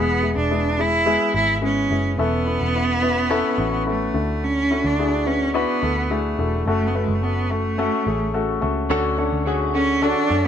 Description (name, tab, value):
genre	piano-driven pop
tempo	107 BPM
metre	4/4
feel	straight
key	unclear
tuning	A4 = 440 Hz
part	rich cello	melody	0.0-10.5 s	G#3 to E4	-22 LUFS	right 2 dB	none
part	warm grand piano	accompaniment	0.0-10.5 s	D3 to B4	-22 LUFS	left 4 dB	none
part	vintage muted picked electric bass	bass	0.0-10.5 s	E1 to F#2	-25 LUFS	equal	none
part	direct-recorded clean electric guitar	riff	8.9-10.5 s	D3 to F#4	-28 LUFS	right 5 dB	ensemble chorus
room	light reverb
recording	none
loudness	-18 LUFS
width	side -9 dB against mid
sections	0.0-8.9 A section; 8.9-10.5 B section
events	none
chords	0.0 E; 2.2 Aadd9/E; 4.1 Dadd9; 6.7 F#m; 8.9 Dmaj7